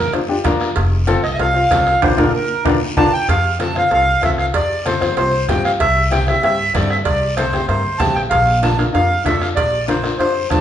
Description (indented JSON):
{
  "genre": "latin, cumbia",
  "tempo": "191 BPM",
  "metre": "4/4",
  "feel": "straight",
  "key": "F major",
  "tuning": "A4 = 443 Hz",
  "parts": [
    { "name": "accordion", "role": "melody", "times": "0.0-10.6 s", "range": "A4 to A5", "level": "-17 LUFS", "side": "right 1 dB", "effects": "none" },
    { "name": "upright bass", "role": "bass", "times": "0.0-10.6 s", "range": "F1 to G2", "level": "-21 LUFS", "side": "equal", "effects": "none" },
    { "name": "warm upright piano", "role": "accompaniment", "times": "0.1-10.6 s", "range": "C4 to C5", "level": "-20 LUFS", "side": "left 4 dB", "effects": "none" },
    { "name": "bombo", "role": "percussion", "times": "0.1-10.6 s", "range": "none", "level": "-24 LUFS", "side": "right 2 dB", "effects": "none" },
    { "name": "cowbell and timbales", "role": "percussion", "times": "0.1-10.6 s", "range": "none", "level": "-26 LUFS", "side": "right 5 dB", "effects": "none" },
    { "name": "guiro", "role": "percussion", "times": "0.1-10.6 s", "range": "none", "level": "-32 LUFS", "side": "left 3 dB", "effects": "none" },
    { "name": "congas", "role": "percussion", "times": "0.5-10.6 s", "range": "none", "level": "-27 LUFS", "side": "left 2 dB", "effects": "none" }
  ],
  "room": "wet large studio reverb, RT60 1.0 s",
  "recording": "band playing live in one room, nothing above 10.8 kHz",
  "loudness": "-14 LUFS",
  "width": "side -10 dB against mid",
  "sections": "0.0-3.3 A section; 3.3-10.6 B section",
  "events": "accordion solo 0.0-3.3; band accent 2.0-3.3; drum fill 2.8-3.3",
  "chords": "0.0 Bb; 0.8 F; 2.0 Bb; 3.3 F; 5.8 C; 8.3 Bb",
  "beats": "0.14 0.45 | 0.77 1.08 1.40 1.71 | 2.02 2.34 2.65 2.97 | 3.28 3.60 3.91 4.23 | 4.54 4.86 5.17 5.48 | 5.80 6.11 6.43 6.74 | 7.06 7.37 7.68 8.00 | 8.31 8.63 8.94 9.26 | 9.57 9.88 10.20 10.51"
}